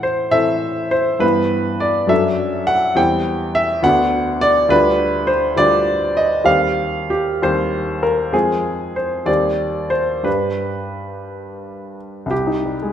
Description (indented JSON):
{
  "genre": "classical, romantic character piece for solo piano",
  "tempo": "58-70 BPM (dotted quarters)",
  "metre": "6/8",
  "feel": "rubato",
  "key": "C minor from 4.7 s",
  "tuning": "A4 = 440 Hz",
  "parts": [
    { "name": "clear grand piano", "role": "solo", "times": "0.0-12.9 s", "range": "C2 to G5", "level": "-16 LUFS", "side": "equal", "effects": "none" }
  ],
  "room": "wet recital hall reverb, RT60 1.6 s",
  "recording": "none",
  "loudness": "-15 LUFS",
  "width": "side -9 dB against mid",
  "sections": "0.0-12.3 A section",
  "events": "none",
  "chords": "0.0 Am; 1.2 Em/G; 2.1 D/F#; 3.0 C/E; 3.8 Bm/D; 4.7 G7/D; 6.5 Cm/Eb; 8.3 Fm; 9.3 Cm/Eb; 10.3 G; 12.3 Cm"
}